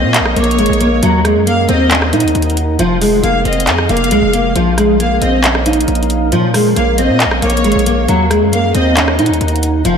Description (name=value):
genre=hip hop, trap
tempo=136 BPM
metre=4/4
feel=half-time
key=Bb minor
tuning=A4 = 441 Hz
part: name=nylon-string guitar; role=melody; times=0.0-10.0 s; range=F3 to Eb4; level=-13 LUFS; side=equal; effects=ensemble chorus, diffuse ambient delay
part: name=warm studio violin section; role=second line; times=0.0-9.0 s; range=Db5 to F5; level=-20 LUFS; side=left 1 dB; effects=diffuse ambient delay
part: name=deep dark ambient pad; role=sustained chords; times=0.0-10.0 s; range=Eb3 to Gb5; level=-22 LUFS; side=right 1 dB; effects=chorus, built-in reverb
part: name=distorted 808-style bass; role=bass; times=0.0-10.0 s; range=F1 to Bb2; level=-16 LUFS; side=equal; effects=distortion
part: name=trap drum kit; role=drums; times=0.1-10.0 s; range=handclaps, hi-hat, rim click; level=-17 LUFS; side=equal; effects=none
room=wet lush hall reverb, RT60 1.7 s, small room ambience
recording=dreamy mix soaked in reverb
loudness=-10 LUFS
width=side -7 dB against mid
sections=0.0-10.0 A section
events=none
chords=0.0 Bbm; 1.0 Ebm; 2.8 Fm; 4.6 Bbm; 8.1 Ebm